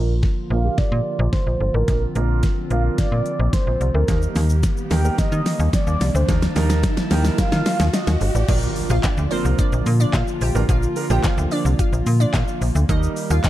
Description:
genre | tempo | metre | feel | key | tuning
dance-pop | 109 BPM | 4/4 | straight | unclear | A4 = 439 Hz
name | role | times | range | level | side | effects
clear concert grand piano | accompaniment | 0.0-13.3 s | F3 to C5 | -29 LUFS | right 7 dB | sidechain pumping, low-pass filter
warm woodwind section | sustained chords | 0.0-13.5 s | D3 to A5 | -29 LUFS | left 1 dB | sidechain pumping, low-pass filter
slap-like FM bass | bass | 0.0-13.4 s | G1 to Eb3 | -19 LUFS | equal | sidechain pumping
riser and impact | sound effects | 2.6-10.7 s | none | -32 LUFS | right 1 dB | none
pop drum kit | drums | 0.2-13.5 s | crash cymbal, handclaps, hi-hat, kick drum, shaker, snare drum | -22 LUFS | equal | none
mellow horn-like synth lead | melody | 0.5-8.6 s | Bb4 to G5 | -27 LUFS | right 1 dB | chorus, low-pass filter, ping-pong delay
glassy wavetable pluck | melody | 8.5-13.5 s | C4 to G5 | -26 LUFS | equal | chorus, sidechain pumping, ping-pong delay
room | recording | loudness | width
light reverb | dark, warm production | -17 LUFS | side -14 dB against mid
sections
0.0-8.5 A section; 8.5-13.5 B section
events
build-up 0.0-8.5; drum fill 0.0-8.5; filter sweep 0.0-8.5; riser 2.6-8.5; drop 8.5-13.5; impact 8.5-10.7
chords
0.0 Bb; 4.1 Eb; 8.5 Bb; 12.9 Eb

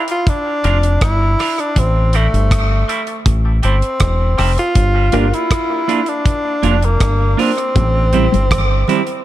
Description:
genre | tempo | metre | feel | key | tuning
dub reggae | 80 BPM | 4/4 | straight | G dorian | A4 = 440 Hz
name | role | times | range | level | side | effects
warm tenor saxophone | melody | 0.0-9.2 s | A3 to F4 | -19 LUFS | equal | tape echo
percussive organ stab | stabs | 0.0-5.3 s | C4 to Bb4 | -28 LUFS | left 6 dB | chorus, phaser, high-pass filter, tape echo
damped 70s drum kit | drums | 0.1-9.2 s | hi-hat, kick drum, rim click | -18 LUFS | equal | none
congas | percussion | 0.1-1.6, 7.8-9.1 s | none | -28 LUFS | right 2 dB | none
semi-hollow electric guitar | accompaniment | 0.6-9.0 s | G3 to F4 | -21 LUFS | right 6 dB | high-pass filter, tape echo
deep dub fingered electric bass | bass | 0.6-8.8 s | E1 to A1 | -15 LUFS | equal | none
mellow electric guitar | riff | 7.8-8.6 s | G2 to A2 | -22 LUFS | left 6 dB | none
room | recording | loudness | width
light reverb, studio reverb | none | -13 LUFS | side -14 dB against mid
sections
0.0-9.2 A section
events
break 0.0-7.8; part muted 1.8-7.8; filter sweep 7.8-9.2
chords
0.0 Gm7; 1.8 Am7; 4.8 Gm7; 7.8 Am7

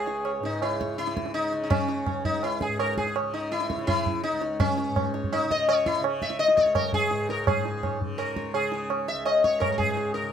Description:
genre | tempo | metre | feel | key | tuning
indian classical, Hindustani | 167 BPM | 4/4 | straight | C# raga shivaranjani | A4 = 440 Hz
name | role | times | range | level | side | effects
sitar | melody | 0.0-10.3 s | C#4 to E5 | -25 LUFS | left 2 dB | none
tanpura | drone | 0.0-10.3 s | C#2 to C#3 | -35 LUFS | left 2 dB | none
tabla | percussion | 0.1-10.3 s | none | -28 LUFS | right 3 dB | none
room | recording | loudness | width
light reverb | close, detailed microphones | -23 LUFS | side -8 dB against mid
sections
0.0-7.5 A section; 7.5-10.3 B section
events
none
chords
none

